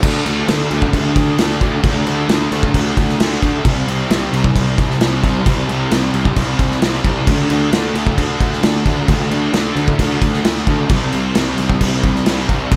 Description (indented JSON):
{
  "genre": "rock, shoegaze and dream pop",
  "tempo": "132 BPM",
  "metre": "4/4",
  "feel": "straight",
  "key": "unclear",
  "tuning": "A4 = 439 Hz",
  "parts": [
    { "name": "fuzz guitar", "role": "riff", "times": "0.0-12.8 s", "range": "C3 to D4", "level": "-21 LUFS", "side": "equal", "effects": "distortion, subtle chorus" },
    { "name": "fuzz picked electric bass", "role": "bass", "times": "0.0-12.8 s", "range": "C2 to D2", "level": "-23 LUFS", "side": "equal", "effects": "overdrive" },
    { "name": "loose indie drum kit", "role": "drums", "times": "0.0-12.8 s", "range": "crash cymbal, kick drum, snare drum", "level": "-19 LUFS", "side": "equal", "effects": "none" }
  ],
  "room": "small room ambience",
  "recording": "none",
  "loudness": "-16 LUFS",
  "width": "mono",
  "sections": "0.0-12.8 A section",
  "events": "none",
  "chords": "0.0 D5; 3.6 C5; 7.3 D5; 10.9 C5"
}